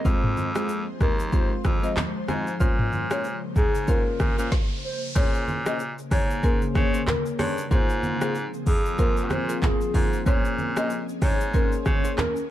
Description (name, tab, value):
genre	afrobeats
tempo	94 BPM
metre	4/4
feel	swing 58% on 16ths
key	Bb minor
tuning	A4 = 442 Hz
part	hollow clarinet-like synth lead	melody	0.0-12.3 s	Ab4 to Eb5	-31 LUFS	left 1 dB	chorus, tape echo
part	soft electric-piano-like synth keys	accompaniment	0.0-12.2 s	Ab3 to C5	-31 LUFS	left 2 dB	chorus
part	ethereal airy pad	sustained chords	0.0-12.5 s	Db3 to C5	-33 LUFS	left 1 dB	ensemble chorus, built-in reverb
part	bright baritone saxophone	bass	0.1-12.1 s	Eb2 to Db3	-29 LUFS	equal	none
part	afro-pop drum kit	drums	0.1-12.5 s	crash cymbal, handclaps, hi-hat, kick drum, rim click, shaker, snare drum, toms	-24 LUFS	equal	none
part	congas	percussion	0.1-12.4 s	none	-32 LUFS	right 2 dB	none
part	riser	sound effects	3.5-5.2 s	none	-39 LUFS	right 1 dB	none
room	digital ambience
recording	dark, warm production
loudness	-22 LUFS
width	side -13 dB against mid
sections	0.0-5.2 A section; 5.2-12.5 B section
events	riser 3.5-5.2; stop 4.5-5.2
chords	0.1 Fm; 2.6 Bbmadd9; 5.2 Bbm9; 7.7 Ab69; 10.3 Bbm9